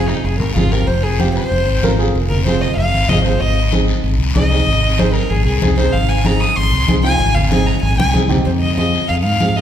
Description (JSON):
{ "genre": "latin, cumbia", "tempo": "190 BPM", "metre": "4/4", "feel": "straight", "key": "F minor", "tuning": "A4 = 440 Hz", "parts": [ { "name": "warm violin", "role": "melody", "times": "0.0-9.6 s", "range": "Eb4 to Eb6", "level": "-19 LUFS", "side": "left 1 dB", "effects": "none" }, { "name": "dark upright piano", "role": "accompaniment", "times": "0.0-9.6 s", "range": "C4 to Bb4", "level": "-21 LUFS", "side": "right 3 dB", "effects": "none" }, { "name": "fingered electric bass", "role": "bass", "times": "0.0-9.6 s", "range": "F1 to Ab2", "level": "-16 LUFS", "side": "equal", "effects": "none" }, { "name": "guiro", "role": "percussion", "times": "0.1-9.6 s", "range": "none", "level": "-28 LUFS", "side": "left 4 dB", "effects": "none" }, { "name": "congas", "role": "percussion", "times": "0.3-9.6 s", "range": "none", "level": "-21 LUFS", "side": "left 1 dB", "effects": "none" } ], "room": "wet recital hall reverb, RT60 1.6 s", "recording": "recorded in a church or concert hall", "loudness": "-13 LUFS", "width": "side -10 dB against mid", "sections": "0.0-8.5 A section; 8.5-9.6 B section", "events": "violin solo 0.0-8.5; drum fill 8.0-8.5", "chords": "0.0 Fm; 3.4 Ab; 8.5 Fm7" }